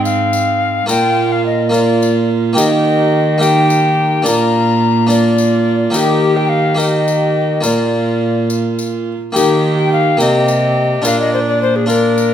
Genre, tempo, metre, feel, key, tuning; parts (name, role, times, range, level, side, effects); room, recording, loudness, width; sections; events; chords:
classical, renaissance-style consort dance; 71 BPM (dotted quarters); 6/8; straight; Eb major; A4 = 436 Hz
tenor recorder; melody; 0.0-12.3 s; G4 to Bb5; -16 LUFS; left 5 dB
warm viola; second line; 0.0-12.3 s; C4 to G4; -19 LUFS; right 6 dB
harpsichord; accompaniment; 0.0-12.3 s; Ab2 to C5; -18 LUFS; left 1 dB
dark cello; bass; 0.0-12.3 s; Ab2 to Eb3; -17 LUFS; right 2 dB
tambourine; percussion; 0.1-12.3 s; -26 LUFS; left 5 dB
moderate recital hall reverb, RT60 1.3 s; -11 LUFS; side -9 dB against mid
0.0-9.4 A section; 9.4-12.3 A section
0.0 Ab; 0.9 Bb; 2.6 Eb; 4.3 Bb; 5.9 Eb; 7.6 Bb; 9.4 Eb; 11.0 Bb